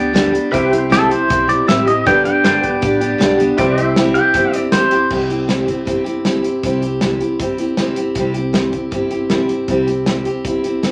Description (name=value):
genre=honky-tonk and classic country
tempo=157 BPM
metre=4/4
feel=straight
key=C major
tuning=A4 = 440 Hz
part: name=pedal steel guitar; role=second line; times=0.0-5.1 s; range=A4 to G5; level=-18 LUFS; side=equal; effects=none
part: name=picked steel-string acoustic guitar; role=accompaniment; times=0.0-10.9 s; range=G2 to G4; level=-19 LUFS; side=equal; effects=none
part: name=warm upright piano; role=accompaniment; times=0.0-5.1 s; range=D4 to C5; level=-27 LUFS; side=equal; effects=none
part: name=pedal steel guitar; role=sustained chords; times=0.0-5.1 s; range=B4 to G5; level=-26 LUFS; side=equal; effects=none
part: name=upright bass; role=bass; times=0.0-10.9 s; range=G1 to D2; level=-30 LUFS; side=equal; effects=none
part: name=natural country drum kit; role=drums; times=0.2-10.9 s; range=crash cymbal, hi-hat, kick drum, snare drum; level=-23 LUFS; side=equal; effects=none
room=wet club reverb, RT60 0.5 s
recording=none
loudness=-16 LUFS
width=mono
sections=0.0-5.1 A section; 5.1-10.9 B section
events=pedal steel guitar solo 0.0-5.1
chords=0.0 G; 0.5 C; 2.1 G; 3.6 C